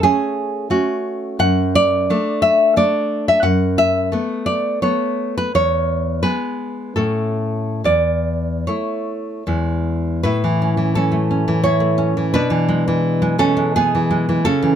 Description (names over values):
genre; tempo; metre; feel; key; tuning
romantic piece for solo classical guitar; 66-90 BPM; 3/4; rubato; A major; A4 = 440 Hz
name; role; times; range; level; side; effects
nylon-string guitar; solo; 0.0-14.8 s; E2 to F#5; -16 LUFS; equal; none
room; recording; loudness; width
little or no reverb; close, detailed microphones; -16 LUFS; side -9 dB against mid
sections
0.0-10.2 A section; 10.2-14.8 B section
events
none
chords
0.0 F#m; 1.4 D/F#; 3.4 B5/F#; 5.5 E; 7.0 A; 7.8 A/E; 9.5 E; 10.2 A; 12.4 E7/B